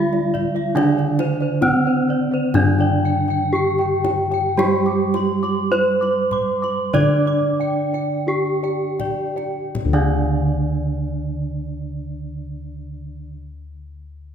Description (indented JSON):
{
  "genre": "Javanese gamelan",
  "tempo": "39-71 BPM",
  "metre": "4/4",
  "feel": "straight",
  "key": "unclear",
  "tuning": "A4 = 439 Hz",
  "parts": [
    { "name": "gamelan-type bronze metallophone", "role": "melody", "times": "0.0-13.4 s", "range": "C4-25c to D5", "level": "-21 LUFS", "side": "equal", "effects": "none" },
    { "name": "gamelan-type bronze metallophone", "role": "accompaniment", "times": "0.0-13.3 s", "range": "D3 to D4", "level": "-24 LUFS", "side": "right 4 dB", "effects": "none" },
    { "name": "gamelan-type bronze metallophone", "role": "arpeggios", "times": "0.0-13.4 s", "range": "C5-25c to D6", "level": "-30 LUFS", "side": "right 3 dB", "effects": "none" },
    { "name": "gamelan-type bossed gongs", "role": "bass", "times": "0.0-13.3 s", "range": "D2 to G4", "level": "-24 LUFS", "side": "left 1 dB", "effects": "none" },
    { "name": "gamelan-type bossed gongs", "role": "arpeggios", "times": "0.1-13.3 s", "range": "C5-25c to D6", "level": "-28 LUFS", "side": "left 5 dB", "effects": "none" },
    { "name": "kendang", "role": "percussion", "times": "0.1-10.5 s", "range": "none", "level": "-30 LUFS", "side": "left 5 dB", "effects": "none" }
  ],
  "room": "moderate concert hall reverb, RT60 2.1 s",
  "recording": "minimal, uncompressed stereo recording",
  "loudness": "-17 LUFS",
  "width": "side -8 dB against mid",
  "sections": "0.0-9.7 A section; 9.7-14.3 B section",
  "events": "slowing down 0.8-9.7",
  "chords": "none"
}